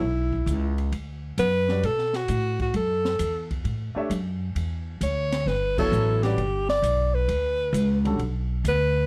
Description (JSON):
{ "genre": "modal jazz", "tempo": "132 BPM", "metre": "4/4", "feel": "swing 68% on 8ths", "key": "B minor", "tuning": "A4 = 440 Hz", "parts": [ { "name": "breathy alto saxophone", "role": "melody", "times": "0.0-9.1 s", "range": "E4 to D5", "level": "-27 LUFS", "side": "equal", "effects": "none" }, { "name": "upright bass", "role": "bass", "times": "0.0-9.1 s", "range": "G1 to B2", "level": "-28 LUFS", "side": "equal", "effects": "none" }, { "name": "open jazz drum kit", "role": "drums", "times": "0.3-8.8 s", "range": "crash cymbal, hi-hat, kick drum, ride cymbal, snare drum", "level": "-39 LUFS", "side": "equal", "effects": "none" }, { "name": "warm concert grand piano", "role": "accompaniment", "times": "1.7-8.2 s", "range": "D3 to E5", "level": "-32 LUFS", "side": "equal", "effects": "none" } ], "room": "small room ambience", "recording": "dry, close 1970s-style studio recording", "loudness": "-25 LUFS", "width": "mono", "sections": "0.0-9.1 A section", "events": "band accent 5.7", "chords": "0.0 Bm11; 4.6 Em11" }